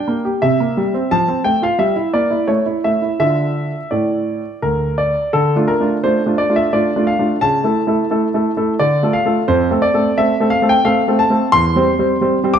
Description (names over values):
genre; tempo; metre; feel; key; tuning
classical-period piano sonatina; 87 BPM; 3/4; straight; D minor; A4 = 440 Hz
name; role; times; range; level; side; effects
warm concert grand piano; solo; 0.0-12.6 s; D2 to D6; -14 LUFS; equal; none
room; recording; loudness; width
moderate recital hall reverb, RT60 1.5 s; dark, warm production; -14 LUFS; side -8 dB against mid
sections
0.0-5.3 A section; 5.3-12.6 B section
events
none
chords
0.4 C7; 1.1 F; 1.8 Edim/G; 2.5 A; 3.2 Dm; 7.4 A/C#; 8.8 Dm; 9.5 F; 11.5 C/E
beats
0.41 | 1.10 1.78 2.48 | 3.19 3.91 4.62 | 5.32 6.02 6.71 | 7.40 8.09 8.78 | 9.47 10.16 10.84 | 11.52 12.20